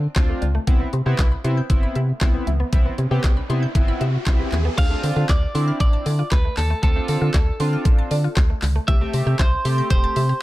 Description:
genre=dance-pop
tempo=117 BPM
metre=4/4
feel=straight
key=D dorian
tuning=A4 = 440 Hz
part: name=organ-like FM bass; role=bass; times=0.0-10.3 s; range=E1 to D3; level=-21 LUFS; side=equal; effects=sidechain pumping
part: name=chorused polysynth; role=accompaniment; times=0.2-10.2 s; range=A3 to G4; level=-28 LUFS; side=equal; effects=sidechain pumping
part: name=smooth R&B drum kit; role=drums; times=0.2-10.3 s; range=crash cymbal, handclaps, hi-hat, kick drum, snare drum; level=-19 LUFS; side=equal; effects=none
part: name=mallet-like synth pluck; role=arpeggios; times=0.3-10.4 s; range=D3 to G6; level=-33 LUFS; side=equal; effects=chorus, phaser, sidechain pumping, tape echo
part: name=riser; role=sound effects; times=2.1-4.8 s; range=none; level=-34 LUFS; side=left 1 dB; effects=none
part: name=twelve-string electric guitar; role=melody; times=4.8-10.4 s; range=A4 to F5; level=-27 LUFS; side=right 1 dB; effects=tape echo
room=digital ambience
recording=none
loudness=-17 LUFS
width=side -17 dB against mid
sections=0.0-4.8 A section; 4.8-10.4 B section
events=riser 2.1-4.8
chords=0.0 Dm7; 0.7 Cmaj7; 4.8 Dm7; 8.9 Am7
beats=0.16 | 0.68 1.19 1.70 2.21 | 2.73 3.24 3.75 4.26 | 4.78 5.29 5.80 6.32 | 6.83 7.34 7.86 8.37 | 8.88 9.39 9.91 10.42

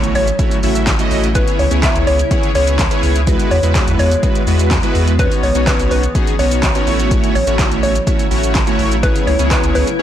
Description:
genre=dance-pop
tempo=125 BPM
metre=4/4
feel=straight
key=unclear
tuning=A4 = 442 Hz
part: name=big bright polysynth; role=accompaniment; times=0.0-10.0 s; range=G#3 to E5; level=-19 LUFS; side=right 1 dB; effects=chorus, sidechain pumping
part: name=granular cloud pad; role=sustained chords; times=0.0-10.0 s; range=C#3 to F#4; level=-24 LUFS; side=equal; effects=built-in reverb, sidechain pumping
part: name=round analog bass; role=bass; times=0.0-9.8 s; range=A1 to E2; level=-17 LUFS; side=equal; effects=sidechain pumping
part: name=deep house drum kit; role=drums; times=0.0-10.0 s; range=handclaps, hi-hat, kick drum, shaker, snare drum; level=-17 LUFS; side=equal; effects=overdrive
part: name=hollow square pluck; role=melody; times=0.2-9.9 s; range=B4 to E5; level=-20 LUFS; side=equal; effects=chorus, ping-pong delay
room=light reverb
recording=blown-out, overdriven recording, overdrive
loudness=-12 LUFS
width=side -10 dB against mid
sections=0.0-10.0 A section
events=none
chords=0.0 A6; 1.4 C#m7; 3.3 Eadd9; 5.2 Badd9; 6.9 A6; 9.0 C#m7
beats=0.39 0.87 | 1.35 1.83 2.31 2.79 | 3.27 3.75 4.23 4.71 | 5.19 5.67 6.15 6.63 | 7.11 7.59 8.07 8.55 | 9.03 9.51 9.99

